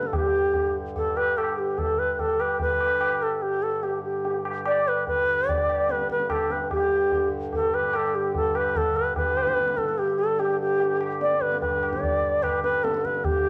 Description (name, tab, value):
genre	indian classical, Hindustani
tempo	146 BPM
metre	4/4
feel	straight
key	G raga hamsadhwani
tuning	A4 = 440 Hz
part	bright bansuri	melody	0.0-13.5 s	G4 to D5	-25 LUFS	equal	none
part	hand-pumped harmonium	drone	0.0-13.5 s	G2 to D3	-36 LUFS	equal	none
part	tabla	percussion	0.0-13.4 s	none	-33 LUFS	equal	none
room	moderate recital hall reverb, RT60 1.4 s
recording	worn, warbling old tape, cassette tape, warbly pitch drift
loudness	-24 LUFS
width	mono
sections	0.0-6.7 A section; 6.7-13.5 B section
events	none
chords	none